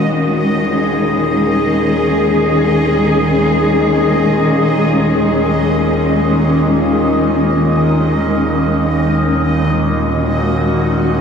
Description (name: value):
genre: dark ambient drone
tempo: free time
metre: none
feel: none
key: unclear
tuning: A4 = 440 Hz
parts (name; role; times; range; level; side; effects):
- dark studio cello section; sustained chords; 0.0-11.2 s; Eb3 to Ab4; -13 LUFS; left 1 dB; shimmer reverb
- dark detuned synth bell; arpeggios; 0.0-8.3 s; none; barely audible; none; none
- overtone-sweeping drone; drone; 0.0-11.2 s; Eb2 to Bb2; -20 LUFS; equal; chorus, built-in reverb
- bubbling stepped-filter texture; texture; 0.0-11.2 s; Eb5; -21 LUFS; right 1 dB; chorus, built-in reverb, shimmer reverb
room: wet cathedral reverb, RT60 6.6 s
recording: dark, warm production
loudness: -12 LUFS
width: side -6 dB against mid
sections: 0.0-11.2 A section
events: fade-in on synth drone 0.0-11.2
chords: 0.0 Gb69/Eb